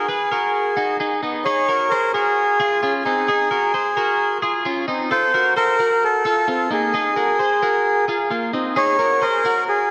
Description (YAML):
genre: indie pop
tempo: 131 BPM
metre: 4/4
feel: straight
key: Db major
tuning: A4 = 435 Hz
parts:
  - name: melodica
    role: melody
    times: 0.0-9.9 s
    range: Ab4 to Db5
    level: -21 LUFS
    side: equal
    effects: tape echo
  - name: twelve-string electric guitar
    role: arpeggios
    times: 0.0-9.9 s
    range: Bb3 to C5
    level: -24 LUFS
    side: equal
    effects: tape echo
room: wet lush hall reverb, RT60 2.7 s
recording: dreamy mix soaked in reverb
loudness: -19 LUFS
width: mono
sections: 0.0-1.5 A section; 1.5-9.9 B section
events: none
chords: 0.0 Abmadd9; 1.5 Dbsus2; 5.1 F; 6.7 Absus2; 8.8 Dbsus2